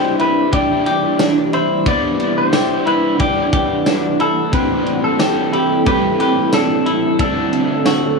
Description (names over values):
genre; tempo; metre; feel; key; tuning
dream pop; 90 BPM; 4/4; straight; E minor; A4 = 438 Hz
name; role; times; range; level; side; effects
clean electric guitar; melody; 0.0-8.2 s; G4 to D5; -20 LUFS; left 1 dB; tape echo
overdriven semi-hollow guitar; accompaniment; 0.0-8.2 s; A2 to B4; -20 LUFS; right 2 dB; harmonic tremolo, lush chorus
shimmering ambient pad; sustained chords; 0.0-8.2 s; F#3 to F#5; -21 LUFS; right 1 dB; chorus, built-in reverb, phaser
semi-hollow electric guitar; arpeggios; 0.0-8.2 s; B3 to G4; -20 LUFS; left 3 dB; wide subtle chorus, tape echo
loose indie drum kit; drums; 0.2-8.0 s; kick drum, ride cymbal, snare drum, tambourine; -22 LUFS; equal; none
room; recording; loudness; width
moderate plate reverb, RT60 2.2 s; none; -13 LUFS; side -3 dB against mid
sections
0.0-8.2 A section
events
none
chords
0.0 Em7; 4.5 Am7; 7.2 D7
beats
0.53 1.20 | 1.86 2.53 3.20 3.86 | 4.53 5.20 5.86 6.53 | 7.20 7.86